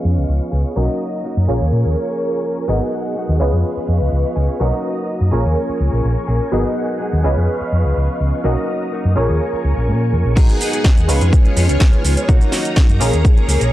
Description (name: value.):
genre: filtered disco house.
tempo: 125 BPM.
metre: 4/4.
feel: straight.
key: unclear.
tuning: A4 = 439 Hz.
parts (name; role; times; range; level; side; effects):
funky polysynth comp; accompaniment; 0.0-13.7 s; G#3 to D#5; -22 LUFS; equal; chorus, phaser, sidechain pumping, low-pass filter.
string machine, full ensemble; sustained chords; 0.0-13.7 s; D#4 to D#6; -25 LUFS; equal; phaser, ensemble chorus, sidechain pumping, low-pass filter.
direct-recorded clean electric guitar; riff; 0.0-13.7 s; E#3 to G#4; -26 LUFS; equal; sidechain pumping, low-pass filter.
hollow-body short-scale fingered electric bass; bass; 0.0-13.7 s; G#1 to A#2; -16 LUFS; equal; sidechain pumping, low-pass filter.
electronic kick drum; drums; 10.4-13.3 s; none; -12 LUFS; equal; none.
house drum kit; drums; 10.4-13.7 s; crash cymbal, hi-hat, shaker, snare drum; -23 LUFS; right 1 dB; sidechain pumping on cymbals, sidechain pumping on perc, sidechain pumping on hats.
room: digital ambience.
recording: dry, gritty hardware recording.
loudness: -14 LUFS.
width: side -14 dB against mid.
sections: 0.0-10.4 A section; 10.4-13.7 B section.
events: filter sweep 0.0-10.4; drop 10.4-13.7.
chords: 0.0 C#7; 0.8 Bmaj7; 1.5 A#m7; 2.7 G#m7; 3.4 C#7; 4.6 Bmaj7; 5.3 A#m7; 6.5 G#m7; 7.2 C#7; 8.4 Bmaj7; 9.2 A#m7; 10.4 G#m7; 11.1 C#7; 12.3 Bmaj7; 13.0 A#m7.